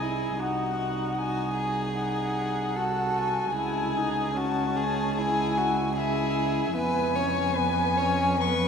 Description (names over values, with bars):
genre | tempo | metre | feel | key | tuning
classical, slow romantic movement for string quartet | 75 BPM | 4/4 | rubato | C# minor | A4 = 441 Hz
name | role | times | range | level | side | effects
dark violin | melody | 0.0-8.7 s | D#5 to C#6 | -29 LUFS | left 4 dB | none
rich violin | second line | 0.0-8.7 s | F#4 to C#5 | -30 LUFS | equal | none
dark viola | accompaniment | 0.0-8.7 s | B3 to F#4 | -31 LUFS | equal | none
warm cello | bass | 0.0-8.7 s | B#1 to E#2 | -30 LUFS | right 3 dB | none
room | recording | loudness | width
wet cathedral reverb, RT60 4.5 s | recorded in a church or concert hall | -24 LUFS | side -6 dB against mid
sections
0.0-8.7 A section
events
none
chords
0.4 G#7/B#; 3.6 C#m; 6.8 C#7/E#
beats
| 0.40 1.18 1.98 2.77 | 3.56 4.36 5.17 5.97 | 6.76 7.56 8.41